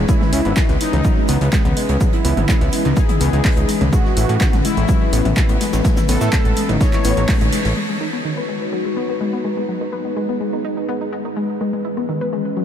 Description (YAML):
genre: melodic techno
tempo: 125 BPM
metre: 4/4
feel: straight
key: G# phrygian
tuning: A4 = 440 Hz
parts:
  - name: dark analog pad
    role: sustained chords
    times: 0.0-12.6 s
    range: E3 to B4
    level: -24 LUFS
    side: left 1 dB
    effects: chorus, phaser, sidechain pumping
  - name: fat analog bass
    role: bass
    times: 0.0-7.7 s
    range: G#1 to A2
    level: -18 LUFS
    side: equal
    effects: sidechain pumping
  - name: analog synth brass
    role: melody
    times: 0.1-7.7 s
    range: D#4 to C#5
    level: -26 LUFS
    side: equal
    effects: chorus, sidechain pumping, ping-pong delay
  - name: analog pluck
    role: arpeggios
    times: 0.1-12.6 s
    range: D#3 to B4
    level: -23 LUFS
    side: left 2 dB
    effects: chorus, sidechain pumping, tape echo
  - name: electronic kick drum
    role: drums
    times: 0.1-7.4 s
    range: none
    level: -16 LUFS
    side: equal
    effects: none
  - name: loose indie drum kit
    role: drums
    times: 0.1-7.8 s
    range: hi-hat, shaker, snare drum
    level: -35 LUFS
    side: left 2 dB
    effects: high-pass filter on hats, high-pass filter on snare, high-pass filter on perc, high-pass filter on room
  - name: punchy analog drum machine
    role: drums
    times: 0.1-12.6 s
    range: handclaps, hi-hat, rim click, toms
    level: -26 LUFS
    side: equal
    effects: overdrive, low-pass filter on hats, low-pass filter on toms, low-pass filter on snare
room: light reverb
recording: none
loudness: -15 LUFS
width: side -9 dB against mid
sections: 0.0-7.8 A section; 7.8-12.6 B section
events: band accent 7.3; filter sweep on synth pluck 7.8-12.6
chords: 0.1 C#m7; 3.9 Aadd9; 7.8 G#m7; 11.6 E6